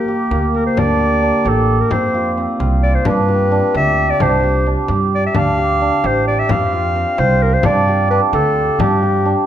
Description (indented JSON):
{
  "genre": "contemporary instrumental, chamber music in an uneven meter",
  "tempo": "262 BPM (eighths)",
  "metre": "5/8",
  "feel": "straight",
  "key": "G minor",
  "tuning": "A4 = 436 Hz",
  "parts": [
    { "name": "clear clarinet", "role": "melody", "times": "0.0-9.5 s", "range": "G4 to F5", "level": "-18 LUFS", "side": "left 2 dB", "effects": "none" },
    { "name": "cimbalom", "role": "arpeggios", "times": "0.0-9.5 s", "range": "Bb3 to Bb4", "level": "-17 LUFS", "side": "right 2 dB", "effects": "none" },
    { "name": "upright bass", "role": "bass", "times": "0.3-9.3 s", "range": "A1 to G2", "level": "-18 LUFS", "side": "right 1 dB", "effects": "none" },
    { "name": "frame drum", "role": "percussion", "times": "0.3-9.0 s", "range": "none", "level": "-22 LUFS", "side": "left 3 dB", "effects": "none" }
  ],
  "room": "moderate recital hall reverb, RT60 1.7 s",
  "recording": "dark, warm production",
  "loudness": "-13 LUFS",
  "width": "side -10 dB against mid",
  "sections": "0.8-9.5 A section",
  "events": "none",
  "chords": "0.0 Gm; 0.8 D5; 1.9 F5; 3.1 G; 4.2 Csus2; 5.4 Dm; 6.5 F5; 7.6 G5",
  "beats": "0.08 0.31 0.54 | 0.77 0.99 1.22 1.45 1.68 | 1.91 2.14 2.37 2.60 2.83 | 3.06 3.29 3.52 3.75 3.98 | 4.21 4.44 4.67 4.89 5.12 | 5.35 5.58 5.81 6.04 6.27 | 6.50 6.73 6.96 7.19 7.42 | 7.64 7.87 8.10 8.33 8.56 | 8.79 9.02 9.25"
}